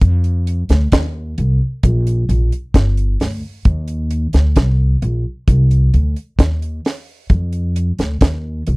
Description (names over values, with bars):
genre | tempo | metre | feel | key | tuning
roots reggae | 66 BPM | 4/4 | straight | Eb major | A4 = 440 Hz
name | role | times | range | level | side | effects
upright bass | bass | 0.0-8.8 s | G1 to F2 | -15 LUFS | equal | none
deep reggae drum kit | drums | 0.0-8.8 s | hi-hat, kick drum, snare drum | -14 LUFS | equal | none
room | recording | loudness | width
little or no reverb | dry, close 1970s-style studio recording | -14 LUFS | side -28 dB against mid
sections
0.0-8.8 A section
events
none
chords
none